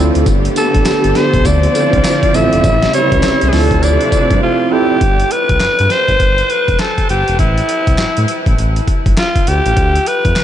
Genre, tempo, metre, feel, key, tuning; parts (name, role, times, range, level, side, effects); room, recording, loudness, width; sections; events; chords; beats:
R&B, new jack swing; 101 BPM; 4/4; swing 62% on 16ths; A4 = 435 Hz
mellow tine electric piano; accompaniment; 0.0-5.0 s; B3 to C5; -19 LUFS; right 4 dB; analog chorus
dark studio string section; sustained chords; 0.0-5.0 s; C3 to G4; -19 LUFS; equal
smooth gliding synth bass; bass; 0.0-10.4 s; E1 to D3; -16 LUFS; equal
boom bap sampler-style drum kit; drums; 0.2-10.4 s; handclaps, hi-hat, kick drum, snare drum, tambourine; -17 LUFS; equal; overdrive
growling alto saxophone; melody; 0.6-10.4 s; E4 to E5; -15 LUFS; equal; diffuse ambient delay
moderate huge ambient reverb, RT60 8.6 s; dreamy mix soaked in reverb, nothing above 10.5 kHz; -10 LUFS; side -11 dB against mid
0.0-5.0 A section; 5.0-10.4 B section
silent gap 4.4-5.0
0.3 Gadd9; 1.4 Dm7; 2.6 A7; 3.5 Dm7; 5.0 Gsus4; 7.4 A5; 9.5 N.C.
| 0.26 0.85 1.45 2.04 | 2.64 3.23 3.83 4.42 | 5.01 5.61 6.20 6.79 | 7.39 7.98 8.58 9.17 | 9.77 10.36